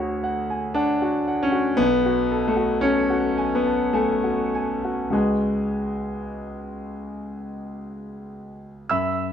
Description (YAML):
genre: classical, impressionist solo piano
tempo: 46-59 BPM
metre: 3/4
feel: rubato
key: unclear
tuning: A4 = 440 Hz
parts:
  - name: clear concert grand piano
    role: solo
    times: 0.0-9.3 s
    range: B1 to E6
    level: -21 LUFS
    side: left 1 dB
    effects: none
room: moderate studio reverb, RT60 0.5 s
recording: dark, warm production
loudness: -20 LUFS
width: side -8 dB against mid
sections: 0.0-8.9 A section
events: none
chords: 0.0 Dmaj7#11; 1.8 Bsus2; 5.1 C#7sus4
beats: 0.75 | 1.79 2.83 3.93 | 5.12 6.38 7.61 | 8.89